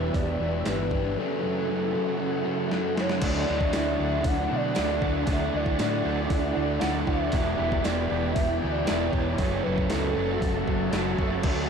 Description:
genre	rock, shoegaze and dream pop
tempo	117 BPM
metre	4/4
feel	straight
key	D major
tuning	A4 = 440 Hz
part	hollow clarinet-like synth lead	melody	0.0-11.2 s	A4 to F#5	-31 LUFS	equal	chorus, tape echo
part	soft string machine	sustained chords	0.0-11.7 s	D4 to D6	-34 LUFS	right 1 dB	phaser, ensemble chorus
part	overdriven semi-hollow guitar	riff	0.0-11.7 s	F#2 to G4	-31 LUFS	right 8 dB	reverse reverb
part	sludgy distorted guitar	riff	0.0-11.7 s	E2 to D4	-33 LUFS	equal	overdrive
part	thick fuzz guitar	riff	0.0-11.7 s	E2 to D4	-33 LUFS	left 9 dB	distortion, wide subtle chorus
part	hollow-body short-scale fingered electric bass	bass	0.0-11.7 s	E1 to B2	-31 LUFS	equal	none
part	gated 80s digital drum machine	drums	0.1-11.6 s	crash cymbal, hi-hat, kick drum, snare drum	-30 LUFS	equal	gated reverb, gated reverb snare
part	tambourine	percussion	0.7-11.1 s	none	-48 LUFS	right 13 dB	none
room	moderate huge ambient reverb, RT60 6.8 s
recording	dreamy mix soaked in reverb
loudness	-24 LUFS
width	side -6 dB against mid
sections	0.0-3.2 A section; 3.2-11.7 B section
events	drum fill 2.7-3.2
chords	0.0 Em7; 1.2 F#m7; 3.2 Dadd9; 7.3 Em7; 9.4 F#m7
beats	0.15 0.66 | 1.17 1.69 2.20 2.71 | 3.23 3.74 4.26 4.77 | 5.28 5.80 6.31 6.83 | 7.34 7.85 8.37 8.88 | 9.40 9.91 10.42 10.94 | 11.45

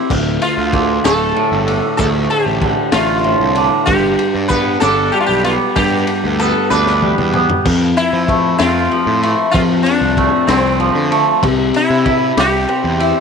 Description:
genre	psychedelic rock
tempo	64 BPM (dotted quarters)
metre	6/8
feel	straight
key	unclear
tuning	A4 = 439 Hz
part	twangy electric guitar	riff	0.0-13.2 s	D2 to G4	-15 LUFS	equal	flanger
part	fuzz picked electric bass	bass	0.1-13.1 s	D1 to F3	-19 LUFS	right 2 dB	overdrive
part	crunchy breakbeat drum kit	drums	0.1-13.2 s	crash cymbal, kick drum, ride cymbal, snare drum, toms	-21 LUFS	left 3 dB	none
part	sitar	melody	0.4-13.2 s	C4 to B4	-18 LUFS	left 1 dB	tape echo
room	light reverb, small room reverb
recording	1960s-style stereo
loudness	-12 LUFS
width	side -6 dB against mid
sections	0.0-7.7 A section; 7.7-13.2 A section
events	drum fill 6.7-7.7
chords	0.1 Dm; 3.9 G; 7.7 F; 11.4 C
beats	| 0.10 1.04 | 1.99 2.93 | 3.88 4.82 | 5.76 6.71 | 7.65 8.60 | 9.54 10.49 | 11.43 12.38

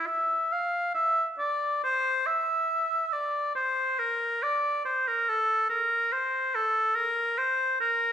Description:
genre	classical, baroque-style fantasia for unaccompanied oboe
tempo	70 BPM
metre	4/4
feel	rubato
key	unclear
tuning	A4 = 440 Hz
part	clear oboe	solo	0.0-8.1 s	A4 to F5	-25 LUFS	equal	none
room	wet recital hall reverb, RT60 1.3 s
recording	recorded in a church or concert hall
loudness	-25 LUFS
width	side -9 dB against mid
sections	0.0-8.1 A section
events	none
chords	none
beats	| 0.07 0.94 1.82 2.69 | 3.54 4.40 5.26 6.12 | 6.97 7.82

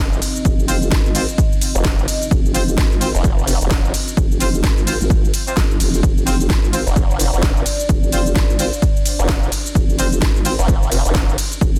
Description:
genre	bass house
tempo	129 BPM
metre	4/4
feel	swing 59% on 16ths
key	F dorian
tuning	A4 = 440 Hz
part	dark analog pad	sustained chords	0.1-11.8 s	C4 to Eb5	-32 LUFS	equal	chorus, phaser, sidechain pumping
part	formant-sweep wobble bass	bass	0.0-3.9, 6.9-11.4 s	F1	-21 LUFS	equal	chorus, overdrive, sidechain pumping
part	garage drum kit	drums	0.1-11.8 s	cabasa, hi-hat, ride cymbal, snare drum	-25 LUFS	equal	none
part	vowel-sweep wobble bass	bass	0.5-11.8 s	F1 to Ab1	-22 LUFS	equal	chorus, sidechain pumping
part	electronic kick drum	drums	0.5-11.7 s	none	-20 LUFS	equal	none
part	clear horn section	stabs	0.7-10.5 s	C4 to C5	-28 LUFS	equal	sidechain pumping, dub echo
room	little or no reverb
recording	dense, heavily limited modern master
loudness	-17 LUFS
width	mono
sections	0.0-11.8 A section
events	none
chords	0.0 F5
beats	| 0.45 0.92 1.38 1.85 | 2.31 2.78 3.24 3.71 | 4.17 4.64 5.10 5.57 | 6.03 6.50 6.96 7.43 | 7.89 8.36 8.82 9.29 | 9.75 10.22 10.68 11.15 | 11.61

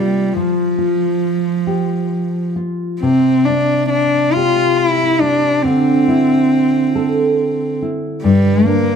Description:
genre	celtic folk, Celtic slow air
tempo	70 BPM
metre	3/4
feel	rubato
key	unclear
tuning	A4 = 440 Hz
part	warm cello	melody	0.0-9.0 s	F3 to F4	-15 LUFS	right 1 dB	none
part	nylon-string guitar	accompaniment	0.0-9.0 s	G2 to A4	-18 LUFS	left 2 dB	none
room	light reverb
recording	close, detailed microphones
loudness	-13 LUFS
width	side -7 dB against mid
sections	0.0-9.0 A section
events	none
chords	0.4 Fsus2; 3.0 Csus2; 5.7 Dsus2; 8.2 Gm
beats	| 0.36 1.22 2.10 | 3.02 3.92 4.79 | 5.65 6.51 7.38 | 8.22

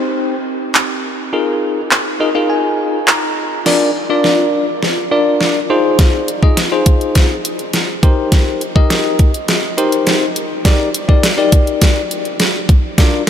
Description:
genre	dance-pop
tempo	103 BPM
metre	4/4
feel	straight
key	Eb major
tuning	A4 = 440 Hz
part	bell-like tine electric piano	accompaniment	0.0-13.2 s	C4 to Bb5	-16 LUFS	left 1 dB	medium stereo tremolo, sidechain pumping
part	pop drum kit	drums	0.7-13.3 s	crash cymbal, handclaps, hi-hat, kick drum, snare drum	-14 LUFS	equal	overdrive
room	wet cathedral reverb, RT60 6.9 s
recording	dreamy mix soaked in reverb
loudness	-12 LUFS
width	side -9 dB against mid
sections	0.0-3.7 A section; 3.7-13.3 B section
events	tine electric piano fill 1.9-3.7; build-up 3.7-13.3; drum fill 3.7-13.3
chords	0.0 Cm; 1.3 Bb7sus4; 3.7 Bb; 5.7 Fm7; 8.0 Cm7; 10.7 Ebmaj7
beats	0.17 0.75 | 1.33 1.91 2.50 3.08 | 3.66 4.24 4.83 5.41 | 5.99 6.57 7.16 7.74 | 8.32 8.90 9.49 10.07 | 10.65 11.23 11.82 12.40 | 12.98

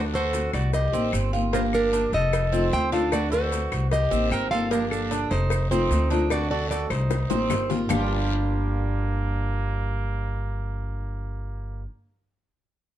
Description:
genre	latin, Cuban son and guajira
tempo	151 BPM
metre	4/4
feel	straight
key	G minor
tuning	A4 = 441 Hz
part	clear trumpet	second line	0.0-11.8 s	Bb3 to C5	-34 LUFS	right 6 dB	none
part	nylon-string guitar	accompaniment	0.0-11.9 s	G2 to G4	-30 LUFS	left 3 dB	none
part	Cuban tres	arpeggios	0.0-11.8 s	G3 to A4	-30 LUFS	right 3 dB	slapback echo
part	upright bass	bass	0.0-11.8 s	F1 to D2	-26 LUFS	equal	none
part	maracas	percussion	0.1-8.0 s	none	-43 LUFS	right 8 dB	none
part	nylon-string guitar	melody	0.2-11.9 s	G4 to G5	-28 LUFS	equal	none
part	cowbell and bongos	percussion	0.3-8.0 s	none	-32 LUFS	left 5 dB	none
part	guiro	percussion	0.3-8.0 s	none	-41 LUFS	left 6 dB	none
part	claves	percussion	0.5-8.0 s	none	-36 LUFS	left 5 dB	none
room	moderate studio reverb, RT60 0.8 s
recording	dark, warm production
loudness	-22 LUFS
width	side -12 dB against mid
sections	0.0-7.9 A section; 7.9-11.1 B section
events	drum fill 7.1-7.9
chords	0.0 D7; 0.7 Cm7; 1.5 Gm7; 2.3 F7; 3.1 D7; 3.9 Cm7; 4.7 Gm9; 5.5 F7; 6.3 D7; 7.1 Cm7; 7.9 Gm7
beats	0.34 0.73 1.13 | 1.53 1.93 2.33 2.73 | 3.12 3.52 3.92 4.32 | 4.72 5.12 5.51 5.91 | 6.31 6.71 7.11 7.50 | 7.90 8.30 8.70 9.10 | 9.50 9.90 10.29 10.69

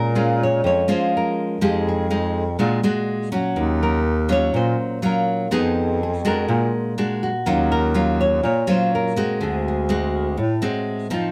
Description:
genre	bossa nova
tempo	123 BPM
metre	4/4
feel	straight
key	Eb dorian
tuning	A4 = 441 Hz
part	nylon-string guitar	melody	0.0-11.3 s	F4 to Db5	-27 LUFS	equal	none
part	nylon-string guitar	accompaniment	0.0-11.3 s	A2 to Ab4	-24 LUFS	equal	none
part	clear bass clarinet	bass	0.0-10.6 s	D2 to Bb2	-25 LUFS	equal	none
room	light reverb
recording	close, detailed microphones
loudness	-21 LUFS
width	mono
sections	0.0-7.5 A section; 7.5-11.3 A section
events	none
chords	0.0 Bbm7; 1.6 Fm9; 2.6 Bb7alt; 3.6 Ebm9; 5.5 Fm7b5; 6.5 Bbaug7; 7.5 Ebm9; 9.4 D7#11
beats	0.15 0.64 1.12 | 1.61 2.10 2.58 3.07 | 3.56 4.05 4.53 5.02 | 5.51 5.99 6.48 6.97 | 7.46 7.94 8.43 8.92 | 9.40 9.89 10.38 10.87

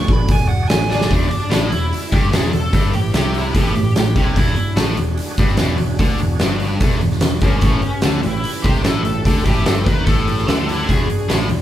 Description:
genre	blues rock power trio and southern rock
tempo	147 BPM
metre	4/4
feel	straight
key	unclear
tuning	A4 = 440 Hz
part	dark smooth lead guitar	second line	0.0-1.1 s	F#5 to B5	-24 LUFS	right 3 dB	overdrive
part	overdriven tonewheel organ	sustained chords	0.0-11.6 s	C#4 to D5	-31 LUFS	right 3 dB	slow rotary speaker, chorus vibrato
part	vintage muted picked electric bass	bass	0.0-11.6 s	E1 to D#2	-22 LUFS	equal	none
part	oversized low-tuned drum kit	drums	0.1-11.6 s	hi-hat, kick drum, snare drum	-17 LUFS	equal	none
part	lead guitar through a small cranked amp	melody	0.9-4.8, 7.4-11.3 s	C#4 to B4	-24 LUFS	left 1 dB	wah, overdrive
part	sludgy distorted guitar	riff	1.1-11.6 s	E2 to D#3	-22 LUFS	equal	overdrive
room	light reverb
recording	band playing live in one room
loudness	-14 LUFS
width	side -12 dB against mid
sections	0.0-1.1 A section; 1.1-11.6 B section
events	lead electric guitar solo 0.0-1.1; drum fill 0.9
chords	0.0 E7; 2.7 A7; 4.4 E7; 7.6 A7; 10.9 E7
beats	0.30 0.70 | 1.11 1.52 1.93 2.33 | 2.74 3.15 3.56 3.96 | 4.37 4.78 5.19 5.60 | 6.00 6.41 6.82 7.23 | 7.63 8.04 8.45 8.85 | 9.26 9.67 10.07 10.48 | 10.88 11.29

